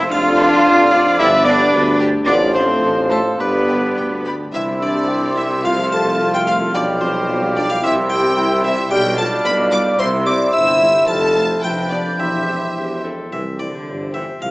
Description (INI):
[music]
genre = cinematic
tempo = 110 BPM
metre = 2/4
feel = straight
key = C major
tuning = A4 = 440 Hz
[part]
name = harpsichord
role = melody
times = 0.0-14.5 s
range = A4 to E6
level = -27 LUFS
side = equal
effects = none
[part]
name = clear clarinet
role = second line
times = 0.0-13.3 s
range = G3 to F5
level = -24 LUFS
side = left 1 dB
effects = none
[part]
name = dark cor anglais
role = second line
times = 0.0-13.0 s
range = B4 to D5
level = -25 LUFS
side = right 1 dB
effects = none
[part]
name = mellow hollow silver concert flute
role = second line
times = 0.0-13.1 s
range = A5 to G6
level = -25 LUFS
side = equal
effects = none
[part]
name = mellow bassoon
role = accompaniment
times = 0.0-13.0 s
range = D3 to G4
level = -23 LUFS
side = right 1 dB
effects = none
[part]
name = rich studio viola section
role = accompaniment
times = 0.0-14.4 s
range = E3 to D5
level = -28 LUFS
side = equal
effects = none
[part]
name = mellow French horn section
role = sustained chords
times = 0.0-13.0 s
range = F3 to E5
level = -21 LUFS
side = left 1 dB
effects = none
[part]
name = concert harp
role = arpeggios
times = 0.0-14.5 s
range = F2 to D6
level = -26 LUFS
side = left 1 dB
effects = none
[part]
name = rich studio cello section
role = bass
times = 0.0-14.5 s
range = E2 to F4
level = -22 LUFS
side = equal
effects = none
[part]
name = rich studio double bass section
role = bass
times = 0.1-14.5 s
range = E1 to F2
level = -31 LUFS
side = equal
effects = none
[part]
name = warm tuba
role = bass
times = 0.1-14.5 s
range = E1 to D2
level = -24 LUFS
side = right 1 dB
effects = none
[part]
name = rich studio violin section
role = melody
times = 0.4-14.4 s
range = C5 to E6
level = -26 LUFS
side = left 1 dB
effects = none
[part]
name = rich studio violin section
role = second line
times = 0.4-14.3 s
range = G4 to E6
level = -30 LUFS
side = equal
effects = none
[sound]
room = moderate scoring stage reverb, RT60 1.8 s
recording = small speaker sound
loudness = -14 LUFS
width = side -21 dB against mid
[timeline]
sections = 0.0-4.5 A section; 4.5-13.3 B section; 13.3-14.5 C section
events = none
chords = 0.1 Dm7/F; 1.2 G; 2.3 F/A; 3.4 G; 4.5 C; 5.6 F/C; 6.7 G7/B; 7.8 C; 8.9 G7/B; 10.0 C; 11.1 F; 11.6 G7/F; 12.2 C/E; 13.3 C